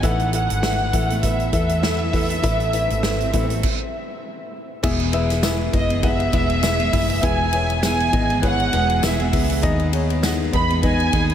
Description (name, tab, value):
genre	piano-driven pop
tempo	100 BPM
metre	4/4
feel	swing 56% on 16ths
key	unclear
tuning	A4 = 440 Hz
part	dark studio violin section	melody	0.0-11.3 s	D#5 to B5	-24 LUFS	right 1 dB	none
part	dark upright piano	accompaniment	0.0-11.3 s	B2 to F#5	-25 LUFS	left 4 dB	none
part	chorused pulse-width pad	sustained chords	0.0-11.3 s	E3 to B4	-32 LUFS	left 1 dB	none
part	picked steel-string acoustic guitar	riff	0.0-11.3 s	E2 to A4	-29 LUFS	right 6 dB	none
part	vintage muted fingered electric bass	bass	0.0-11.3 s	E1 to E2	-23 LUFS	equal	none
part	natural country drum kit	drums	0.0-11.3 s	crash cymbal, hi-hat, kick drum, ride cymbal, snare drum	-24 LUFS	equal	none
part	swell	sound effects	2.8-3.6 s	none	-37 LUFS	right 1 dB	none
part	tambourine	percussion	5.4-10.4 s	none	-36 LUFS	left 7 dB	none
room	wet cathedral reverb, RT60 6.2 s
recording	dreamy mix soaked in reverb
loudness	-17 LUFS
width	side -9 dB against mid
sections	0.0-4.8 A section; 4.8-11.3 B section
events	swell 2.8-4.8; stop 3.6-4.8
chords	0.0 Asus2; 4.8 E; 9.6 G#m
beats	| 0.03 0.63 1.23 1.83 | 2.43 3.03 3.63 4.23 | 4.83 5.43 6.03 6.63 | 7.23 7.83 8.43 9.03 | 9.63 10.23 10.83